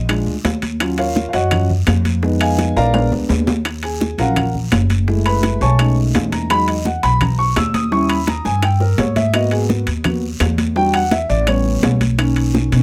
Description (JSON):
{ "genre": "Afro-Cuban jazz", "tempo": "169 BPM", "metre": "4/4", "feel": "straight", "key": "Eb minor", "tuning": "A4 = 440 Hz", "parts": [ { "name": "dark upright piano", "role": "accompaniment", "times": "0.0-12.8 s", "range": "D#3 to E6", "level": "-21 LUFS", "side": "equal", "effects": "none" }, { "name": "upright bass", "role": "bass", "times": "0.0-12.8 s", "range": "Gb1 to B2", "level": "-21 LUFS", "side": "equal", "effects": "none" }, { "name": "bongos", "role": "percussion", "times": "0.1-12.7 s", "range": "none", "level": "-27 LUFS", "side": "equal", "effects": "none" }, { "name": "claves", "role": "percussion", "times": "0.1-12.4 s", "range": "none", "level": "-30 LUFS", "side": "equal", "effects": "none" }, { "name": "congas", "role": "percussion", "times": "0.1-12.8 s", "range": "none", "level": "-25 LUFS", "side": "equal", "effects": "none" }, { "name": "guiro", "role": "percussion", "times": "0.1-12.8 s", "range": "none", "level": "-36 LUFS", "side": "equal", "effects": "none" }, { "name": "timbales", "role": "percussion", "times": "0.1-12.8 s", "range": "none", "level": "-26 LUFS", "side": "equal", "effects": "none" } ], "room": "light reverb", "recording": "close, detailed microphones", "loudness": "-17 LUFS", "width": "mono", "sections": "0.0-3.7 A section; 3.7-12.8 A section", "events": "upright piano solo 0.0-12.8; drum fill 2.9-3.7, 8.5-9.3", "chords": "0.1 Bb7; 0.8 Ebm9; 2.2 Bb7b9; 3.7 Ebm9; 5.1 Gbm9; 5.8 B13; 6.5 Emaj7; 7.9 Eb7b9; 9.3 Abm7; 10.8 Em7; 11.5 A9; 12.2 Bmaj7", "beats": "0.09 0.45 | 0.81 1.16 1.52 1.87 | 2.23 2.59 2.94 3.30 | 3.65 4.01 4.37 4.72 | 5.08 5.43 5.79 6.15 | 6.50 6.86 7.21 7.57 | 7.92 8.28 8.63 8.99 | 9.35 9.70 10.06 10.41 | 10.77 11.12 11.48 11.83 | 12.19 12.55" }